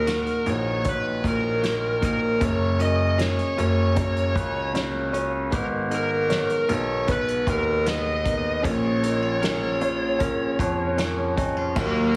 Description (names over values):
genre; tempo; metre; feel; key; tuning
pop ballad; 77 BPM; 4/4; straight; unclear; A4 = 435 Hz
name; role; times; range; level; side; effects
bluesy overdriven lead guitar; melody; 0.0-12.2 s; Bb3 to Eb5; -28 LUFS; equal; distortion
felt-muted upright piano; accompaniment; 0.0-12.2 s; Ab2 to Ab5; -30 LUFS; equal; none
direct-recorded clean electric guitar; arpeggios; 0.0-12.2 s; Ab2 to Bb4; -37 LUFS; equal; spring reverb
clear baby grand piano; bass; 0.0-12.2 s; Gb1 to F2; -29 LUFS; equal; none
unplugged drum kit; drums; 0.1-11.9 s; crash cymbal, hi-hat, kick drum, snare drum; -32 LUFS; equal; none
tambourine; percussion; 11.8-11.9 s; none; -44 LUFS; equal; none
room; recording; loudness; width
light reverb, studio reverb; heavily compressed radio sound; -24 LUFS; mono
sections
0.0-11.8 A section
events
felt piano fill 10.6-11.8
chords
0.0 Ebm; 2.4 Gbadd9; 5.5 Abmadd9; 8.6 Bbm7